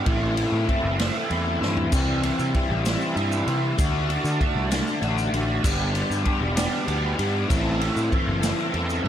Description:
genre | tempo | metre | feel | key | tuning
psychedelic rock | 65 BPM (dotted quarters) | 6/8 | straight | A dorian | A4 = 445 Hz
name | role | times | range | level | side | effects
tonewheel organ | sustained chords | 0.0-9.1 s | F#4 to C6 | -36 LUFS | right 6 dB | chorus vibrato, slow rotary speaker
crunchy overdriven guitar | riff | 0.0-9.1 s | G2 to A4 | -24 LUFS | equal | rotary speaker
fuzz picked electric bass | bass | 0.1-9.1 s | E1 to D3 | -27 LUFS | equal | overdrive
vintage drum kit | drums | 0.1-9.1 s | crash cymbal, kick drum, ride cymbal, snare drum, toms | -27 LUFS | equal | none
maracas | percussion | 1.9-9.0 s | none | -40 LUFS | left 2 dB | none
room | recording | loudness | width
small room reverb | none | -21 LUFS | side -10 dB against mid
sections
0.0-9.1 A section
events
drum fill 1.6-1.9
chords
0.1 Am; 1.9 C; 3.8 D; 5.6 G; 7.5 Am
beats
| 0.07 1.00 | 1.93 2.86 | 3.79 4.72 | 5.64 6.57 | 7.50 8.43

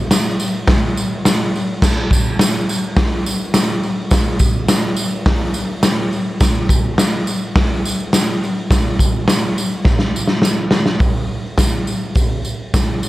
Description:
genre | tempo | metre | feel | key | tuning
rock | 105 BPM | 4/4 | straight | none | none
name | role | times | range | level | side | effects
raw garage drum kit | drums | 0.1-12.9 s | crash cymbal, hi-hat, kick drum, snare drum | -14 LUFS | equal | none
tambourine | percussion | 0.1-13.1 s | none | -26 LUFS | right 2 dB | none
room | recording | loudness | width
light reverb | none | -14 LUFS | side -16 dB against mid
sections
0.0-11.0 A section; 11.0-13.1 B section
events
drum fill 9.9-11.0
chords
none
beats
0.11 0.68 1.25 | 1.82 2.40 2.97 3.54 | 4.12 4.69 5.26 5.83 | 6.41 6.98 7.56 8.13 | 8.70 9.28 9.85 10.43 | 11.01 11.58 12.16 12.74

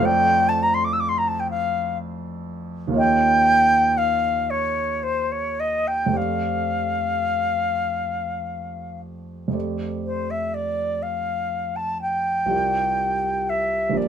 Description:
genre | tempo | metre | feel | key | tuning
classical, impressionist duo for flute and grand piano | 35-43 BPM (dotted quarters) | 6/8 | rubato | F major | A4 = 440 Hz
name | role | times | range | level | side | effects
silver concert flute | melody | 0.0-14.1 s | C5 to E6 | -21 LUFS | left 1 dB | none
dark baby grand piano | accompaniment | 0.0-14.1 s | Bb1 to Eb5 | -26 LUFS | right 2 dB | none
room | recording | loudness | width
light reverb | minimal, uncompressed stereo recording | -20 LUFS | side -8 dB against mid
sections
0.0-9.5 A section; 9.5-14.1 B section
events
none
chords
0.1 F6; 3.0 Eb9; 6.2 F69; 12.5 C11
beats
| 0.06 1.49 | 2.98 4.51 | 6.16 7.87 | 9.54 11.03 | 12.52 13.97

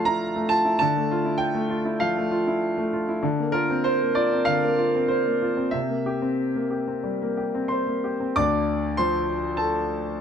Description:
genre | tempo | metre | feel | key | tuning
neoclassical minimalist piano | 88-100 BPM | 4/4 | rubato | D minor | A4 = 440 Hz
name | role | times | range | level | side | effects
clear concert grand piano | solo | 0.0-10.2 s | D2 to D6 | -22 LUFS | equal | none
room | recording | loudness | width
light reverb | dark, warm production | -22 LUFS | side -8 dB against mid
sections
0.0-8.4 A section; 8.4-10.2 B section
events
none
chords
0.0 Dmadd9; 3.2 Bbadd9/D; 5.7 C7; 8.4 Dm7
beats
0.20 | 0.81 1.41 2.02 2.62 | 3.23 3.85 4.47 5.10 | 5.74 6.39 7.04 7.71 | 8.36 8.98 9.59 10.20

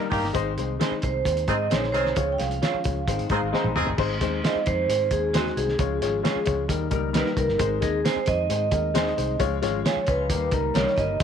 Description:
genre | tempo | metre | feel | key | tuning
uptempo 1960s-style soul | 133 BPM | 4/4 | straight | Ab major | A4 = 439 Hz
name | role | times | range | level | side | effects
dark upright piano | accompaniment | 0.0-11.2 s | G3 to Eb5 | -29 LUFS | left 12 dB | none
mellow tonewheel organ | sustained chords | 0.0-11.2 s | Eb3 to F4 | -36 LUFS | right 1 dB | fast rotary speaker, chorus vibrato
warm horn section | second line | 0.1-3.9 s | Eb3 to Ab4 | -30 LUFS | right 2 dB | slapback echo
vintage muted fingered electric bass | bass | 0.1-11.2 s | F1 to Ab2 | -30 LUFS | right 1 dB | none
cloth-damped thuddy drum kit | drums | 0.1-11.2 s | crash cymbal, hi-hat, kick drum, snare drum, toms | -27 LUFS | right 1 dB | none
electric guitar through a small old amp | stabs | 0.8-10.9 s | G3 to Db5 | -33 LUFS | right 13 dB | wide subtle chorus
vibraphone with medium hard mallets | melody | 1.0-11.2 s | Gb4 to G5 | -26 LUFS | right 2 dB | slapback echo
electric guitar through a small old amp | riff | 3.1-4.0, 10.1-11.2 s | Eb3 to G4 | -35 LUFS | left 10 dB | wide subtle chorus
room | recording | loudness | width
moderate spring reverb, RT60 1.8 s, small room ambience | 1960s-style stereo with parts hard left and right | -22 LUFS | side -8 dB against mid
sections
0.0-4.0 A section; 4.0-11.2 B section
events
drum fill 3.5-4.0; vibraphone solo 4.0-11.2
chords
0.3 Ab; 2.2 Db; 3.1 Ab; 5.8 Db; 6.7 Eb; 7.6 Ab; 9.4 Db; 10.3 Eb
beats
| 0.35 0.80 1.26 1.71 | 2.17 2.62 3.08 3.53 | 3.98 4.43 4.89 5.34 | 5.79 6.24 6.70 7.15 | 7.60 8.05 8.50 8.95 | 9.40 9.85 10.30 10.75 | 11.20

